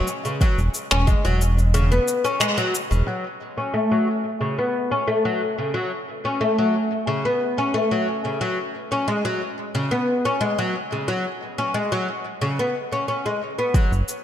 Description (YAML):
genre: organic downtempo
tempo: 90 BPM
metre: 4/4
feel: straight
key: F# minor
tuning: A4 = 439 Hz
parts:
  - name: oud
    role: arpeggios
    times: 0.0-13.9 s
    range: C#3 to C#4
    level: -22 LUFS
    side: left 1 dB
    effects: low-pass filter, tape echo
  - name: round analog bass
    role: bass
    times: 0.0-3.0, 13.9-14.0 s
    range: E1 to F#1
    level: -18 LUFS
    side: equal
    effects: sidechain pumping
  - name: electronic cabasa and finger snaps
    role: drums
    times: 0.1-3.0, 13.8-14.2 s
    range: none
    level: -25 LUFS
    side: left 1 dB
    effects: overdrive
  - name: electronic kick drum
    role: drums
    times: 0.4-1.2, 13.7-13.9 s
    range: none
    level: -19 LUFS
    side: equal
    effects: overdrive
room: moderate lush hall reverb, RT60 2.2 s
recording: dark, warm production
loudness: -20 LUFS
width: side -10 dB against mid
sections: 0.0-3.1 A section; 3.1-13.7 B section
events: kick drops out 1.7-3.1; band accent 2.4-2.7; filter sweep on oud 3.1-13.7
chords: 0.0 N.C.; 3.1 F#m; 8.4 C#7sus4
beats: | 0.41 1.07 1.74 2.41 | 3.07 3.74 4.41 5.07 | 5.74 6.41 7.07 7.74 | 8.41 9.07 9.74 10.41 | 11.07 11.74 12.41 13.07 | 13.74